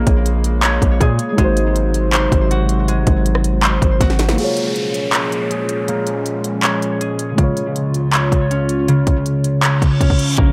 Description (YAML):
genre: hip hop, trap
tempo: 160 BPM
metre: 4/4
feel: half-time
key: Bb minor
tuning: A4 = 442 Hz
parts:
  - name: muted felt-like synth keys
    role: accompaniment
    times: 0.0-10.4 s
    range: Db3 to Db5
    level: -25 LUFS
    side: equal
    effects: chorus, low-pass filter, tape echo
  - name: warbly tape-like pad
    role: sustained chords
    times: 0.0-10.4 s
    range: Db2 to F4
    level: -27 LUFS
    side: equal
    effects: chorus, built-in reverb, low-pass filter
  - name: concert harp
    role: arpeggios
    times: 0.0-10.5 s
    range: Db3 to Db5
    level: -23 LUFS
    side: equal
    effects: low-pass filter, tape echo
  - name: distorted 808-style bass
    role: bass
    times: 0.0-4.4, 10.4-10.5 s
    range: Ab1 to Bb2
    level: -20 LUFS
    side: equal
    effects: distortion
  - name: trap drum kit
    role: drums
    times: 0.1-10.5 s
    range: handclaps, hi-hat, kick drum, rim click, snare drum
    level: -19 LUFS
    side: equal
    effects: none
  - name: downlifter and reverse cymbal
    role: sound effects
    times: 4.4-10.4 s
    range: none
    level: -30 LUFS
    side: equal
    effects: none
room: light reverb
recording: echo-heavy mix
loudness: -17 LUFS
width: mono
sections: 0.0-4.4 A section; 4.4-10.4 B section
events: drum fill 4.0-4.4; filter sweep 4.4-10.4; reverse cymbal 9.8-10.4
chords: 0.0 Bbm7; 1.4 Ab7; 4.4 Bbm7; 7.4 Db